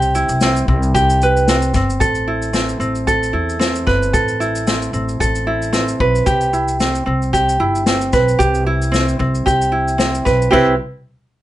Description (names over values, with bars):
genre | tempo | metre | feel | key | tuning
acoustic pop | 113 BPM | 4/4 | swing 55% on 16ths | C major | A4 = 439 Hz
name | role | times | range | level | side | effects
ukulele | accompaniment | 0.0-10.7 s | C4 to B4 | -16 LUFS | right 1 dB | none
upright bass | bass | 0.0-10.8 s | G1 to E2 | -20 LUFS | equal | none
unplugged drum kit | drums | 0.0-10.7 s | crash cymbal, kick drum, shaker, snare drum | -20 LUFS | left 2 dB | none
room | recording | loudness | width
moderate studio ambience, RT60 0.5 s | nothing above 11.0 kHz | -14 LUFS | side -14 dB against mid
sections
0.0-2.0 A section; 2.0-10.5 B section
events
none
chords
0.0 Cmaj7; 2.0 Amadd9; 6.3 Cmaj7